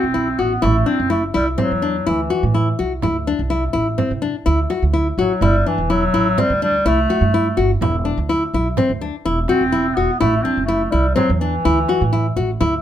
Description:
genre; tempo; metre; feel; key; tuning
contemporary instrumental, chamber music in an uneven meter; 125 BPM; 5/4; straight; A dorian; A4 = 440 Hz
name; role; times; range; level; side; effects
warm clarinet; melody; 0.0-12.4 s; E3 to C4; -20 LUFS; equal; none
nylon-string guitar; arpeggios; 0.0-12.7 s; C4 to F#4; -19 LUFS; left 3 dB; none
upright bass; bass; 0.0-12.8 s; E1 to C3; -21 LUFS; right 2 dB; none
frame drum; percussion; 0.6-12.8 s; none; -25 LUFS; right 5 dB; none
room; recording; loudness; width
light reverb; close, detailed microphones; -15 LUFS; side -10 dB against mid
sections
0.6-12.8 A section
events
none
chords
0.0 E5; 0.6 Am; 3.0 N.C.; 5.4 Gsus2; 7.8 E5; 10.2 Am

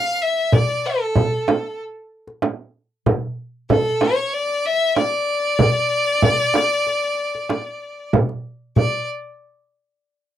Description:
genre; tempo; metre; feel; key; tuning
Arabic maqam ensemble; 95 BPM; 4/4; straight; D maqam nahawand; A4 = 440 Hz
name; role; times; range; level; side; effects
bright violin; melody; 0.0-9.1 s; A4 to F5+20c; -20 LUFS; left 2 dB; none
darbuka; percussion; 0.5-9.1 s; none; -21 LUFS; left 2 dB; none
frame drum; percussion; 0.5-9.1 s; none; -20 LUFS; right 4 dB; none
room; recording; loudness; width
moderate booth ambience, RT60 0.2 s; dry, close 1970s-style studio recording; -18 LUFS; side -11 dB against mid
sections
0.0-8.8 A section; 8.8-10.4 B section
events
none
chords
none

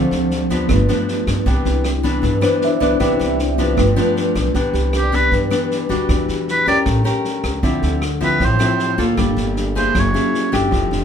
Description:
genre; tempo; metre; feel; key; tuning
bossa nova; 156 BPM; 4/4; straight; C major; A4 = 440 Hz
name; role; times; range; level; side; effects
mellow tine electric piano; accompaniment; 0.0-11.0 s; F3 to E5; -23 LUFS; right 2 dB; medium stereo tremolo
nylon-string guitar; accompaniment; 0.0-11.0 s; G2 to Bb4; -19 LUFS; left 3 dB; none
upright bass; bass; 0.0-11.0 s; F1 to G2; -21 LUFS; right 1 dB; none
vintage drum kit; drums; 0.1-11.0 s; kick drum, rim click, snare drum; -24 LUFS; equal; none
clear oboe; melody; 5.0-10.5 s; G4 to D5; -18 LUFS; right 1 dB; none
room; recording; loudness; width
moderate small room reverb, RT60 0.5 s; band playing live in one room; -15 LUFS; side -8 dB against mid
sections
0.0-4.5 A section; 4.5-11.0 A section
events
tine electric piano solo 0.0-4.5; oboe solo 4.5-11.0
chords
0.0 Dm7; 0.7 G7; 1.5 Cmaj9; 3.8 G7; 4.5 Cmaj9; 6.1 Em9; 6.9 A7b9; 7.6 Dm9; 9.2 Gm9; 9.9 F#9

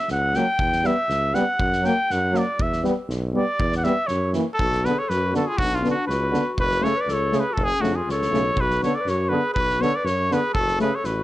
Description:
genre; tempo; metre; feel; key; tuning
balkan folk, Balkan brass band; 120 BPM; 2/4; straight; E dorian sharp4, B dorian sharp4 from 4.6 s; A4 = 438 Hz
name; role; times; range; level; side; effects
clear trumpet; melody; 0.0-11.2 s; E#4 to G5; -23 LUFS; equal; none
mellow tuba; bass; 0.1-11.2 s; F#1 to F#2; -26 LUFS; equal; none
loose indie drum kit; percussion; 0.1-11.1 s; kick drum, snare drum; -30 LUFS; equal; vintage 12-bit sampler grit
mellow French horn; accompaniment; 0.3-10.9 s; A3 to B3; -26 LUFS; left 4 dB; none
warm euphonium; accompaniment; 0.4-10.9 s; C#3 to G3; -27 LUFS; right 4 dB; none
mellow clarinet; second line; 4.6-11.2 s; C#4 to B4; -30 LUFS; left 4 dB; none
room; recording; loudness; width
light reverb; cassette tape; -20 LUFS; side -15 dB against mid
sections
0.0-4.6 A section; 4.6-11.2 B section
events
trumpet solo 0.0-4.6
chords
0.0 F#; 0.6 Em; 1.6 F#; 2.6 Em; 4.1 F#7; 4.6 Bm; 6.6 F#m; 8.6 Bm; 10.5 F#m

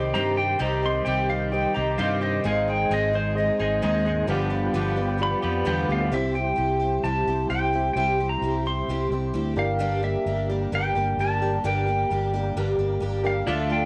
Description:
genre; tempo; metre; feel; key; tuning
rock; 131 BPM; 4/4; straight; C minor; A4 = 441 Hz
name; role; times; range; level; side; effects
bright reed electric piano; accompaniment; 0.0-13.9 s; F4 to G5; -34 LUFS; equal; fast tremolo
picked twelve-string acoustic guitar; accompaniment; 0.0-13.9 s; G2 to Ab4; -31 LUFS; equal; none
mellow tonewheel organ; sustained chords; 0.0-13.9 s; A3 to D5; -36 LUFS; equal; slow rotary speaker, overdrive, chorus vibrato
twelve-string electric guitar; riff; 0.0-6.1, 13.5-13.9 s; G2 to Ab4; -31 LUFS; equal; none
fingered electric bass; bass; 0.0-13.9 s; G1 to G2; -30 LUFS; equal; none
pedal steel guitar; melody; 0.1-13.9 s; C5 to C6; -29 LUFS; equal; cassette tape
room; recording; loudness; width
light reverb, digital ambience; home recording on cassette; -24 LUFS; mono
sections
0.0-6.1 A section; 6.1-13.9 B section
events
pedal steel guitar solo 0.0-6.1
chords
0.0 Cm; 2.4 Ab; 4.3 G7; 6.1 C; 9.6 Gm

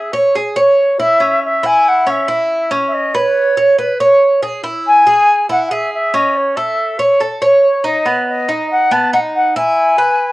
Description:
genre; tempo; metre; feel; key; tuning
latin; 140 BPM; 4/4; straight; E major; A4 = 440 Hz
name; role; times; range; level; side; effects
concert flute; melody; 0.0-10.3 s; C#5 to A5; -13 LUFS; equal; cassette tape, plate reverb
Cuban tres; arpeggios; 0.0-10.3 s; B3 to C#5; -14 LUFS; right 1 dB; cassette tape, plate reverb
room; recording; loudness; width
wet booth ambience, RT60 0.3 s; home recording on cassette; -11 LUFS; side -18 dB against mid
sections
0.0-10.3 A section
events
none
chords
0.0 C#m; 2.9 Bsus2; 4.6 E; 6.3 A; 8.1 B; 9.8 E

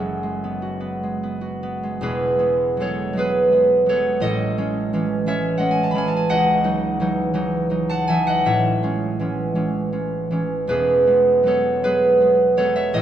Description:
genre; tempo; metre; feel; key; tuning
classical, solo harp piece; 48-60 BPM (dotted quarters); 6/8; rubato; E major; A4 = 444 Hz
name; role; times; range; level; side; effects
concert harp; solo; 0.0-13.0 s; E1 to B5; -18 LUFS; right 1 dB; none
room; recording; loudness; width
moderate scoring stage reverb, RT60 1.5 s; dark, warm production; -18 LUFS; side -10 dB against mid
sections
0.0-2.0 A section; 2.0-13.0 B section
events
none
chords
0.0 F#m11; 2.0 Eadd9; 4.2 Amaj7#11; 6.3 C#madd9; 8.4 Amaj7; 10.7 Eadd9

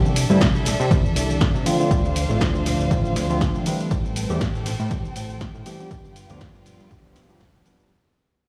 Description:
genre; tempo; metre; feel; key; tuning
filtered disco house; 120 BPM; 4/4; swing 55% on 16ths; unclear; A4 = 435 Hz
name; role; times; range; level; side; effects
clear studio violin section; sustained chords; 0.0-7.9 s; C4 to G5; -33 LUFS; equal; sidechain pumping
fat analog bass; bass; 0.0-7.5 s; D1 to C3; -26 LUFS; equal; sidechain pumping
punchy analog drum machine; drums; 0.1-7.9 s; hi-hat, ride cymbal, shaker, snare drum; -31 LUFS; equal; sidechain pumping on cymbals, sidechain pumping on perc, sidechain pumping on hats, tape echo
congas and tambourine; percussion; 0.1-7.9 s; none; -36 LUFS; equal; none
tine electric piano; accompaniment; 0.3-7.9 s; D3 to B4; -28 LUFS; equal; phaser, sidechain pumping, tape echo
electronic kick drum; drums; 0.4-7.5 s; none; -25 LUFS; equal; none
room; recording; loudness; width
light reverb; echo-heavy mix, studio ambience; -21 LUFS; mono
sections
0.0-7.9 A section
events
drop 0.0-7.9; fade-out 0.0-7.9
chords
0.0 C69; 1.7 Dm7; 3.9 Am7; 5.9 G7

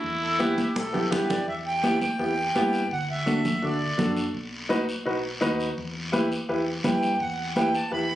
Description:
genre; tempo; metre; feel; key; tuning
latin, cumbia; 167 BPM; 4/4; straight; E minor; A4 = 442 Hz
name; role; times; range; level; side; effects
bright trumpet; melody; 0.0-1.1 s; E4; -29 LUFS; right 1 dB; none
hollow-body short-scale fingered electric bass; bass; 0.0-8.2 s; B1 to G2; -35 LUFS; left 1 dB; none
guiro; percussion; 0.0-8.2 s; none; -36 LUFS; left 1 dB; none
accordion; second line; 0.2-4.1, 6.9-8.2 s; G4 to B5; -28 LUFS; right 2 dB; none
warm upright piano; accompaniment; 0.4-8.0 s; B3 to B4; -27 LUFS; left 1 dB; none
congas; percussion; 0.4-7.7 s; none; -29 LUFS; equal; none
room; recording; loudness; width
light reverb; recorded on a phone in the room, studio ambience, nothing above 10.5 kHz; -23 LUFS; side -13 dB against mid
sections
0.0-1.5 A section; 1.5-8.2 B section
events
drum fill 0.6-1.5; accordion solo 1.5-8.2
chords
0.0 Em; 2.9 D; 4.3 B; 5.8 Em

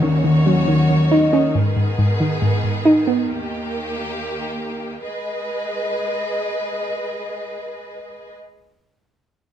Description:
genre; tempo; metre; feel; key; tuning
hip hop; 138 BPM; 4/4; half-time; G# minor; A4 = 440 Hz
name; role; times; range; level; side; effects
glassy wavetable pluck; accompaniment; 0.0-3.3 s; G#2 to D#4; -17 LUFS; right 1 dB; chorus
clear symphonic string section; sustained chords; 0.0-8.3 s; D#2 to D#5; -25 LUFS; equal; none
mellow electric guitar; arpeggios; 0.0-1.6 s; D#3 to D#5; -17 LUFS; left 1 dB; spring reverb, tape echo
downlifter; sound effects; 0.0-1.6 s; none; -39 LUFS; right 2 dB; none
room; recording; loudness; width
moderate studio reverb, RT60 0.7 s; none; -17 LUFS; side -10 dB against mid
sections
0.0-5.0 A section; 5.0-8.5 B section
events
none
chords
0.0 D#m7; 1.5 G#m; 3.3 D#; 5.0 G#m

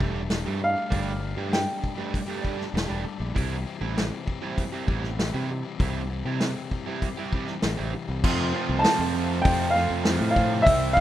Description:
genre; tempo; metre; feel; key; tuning
indie rock; 98 BPM; 4/4; straight; unclear; A4 = 440 Hz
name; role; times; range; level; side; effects
clear upright piano; melody; 0.0-3.0, 8.8-11.0 s; E5 to A5; -24 LUFS; equal; none
crunchy overdriven guitar; riff; 0.0-11.0 s; C3 to G4; -34 LUFS; left 9 dB; none
overdriven electric guitar; riff; 0.0-11.0 s; F2 to G4; -32 LUFS; right 9 dB; lush chorus, analog delay
growling fingered electric bass; bass; 0.0-10.9 s; E1 to C3; -28 LUFS; equal; overdrive
vintage drum kit; drums; 0.0-11.0 s; crash cymbal, hi-hat, kick drum, snare drum; -27 LUFS; equal; none
glockenspiel with soft plastic mallets; second line; 8.2-11.0 s; C6 to E6; -39 LUFS; left 6 dB; none
overdriven combo organ; sustained chords; 8.2-11.0 s; E3 to G5; -36 LUFS; left 2 dB; none
room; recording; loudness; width
little or no reverb; rough home demo mix; -23 LUFS; side -12 dB against mid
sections
0.0-8.2 A section; 8.2-11.0 B section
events
none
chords
0.0 Gsus2; 3.4 C; 8.2 Fadd9

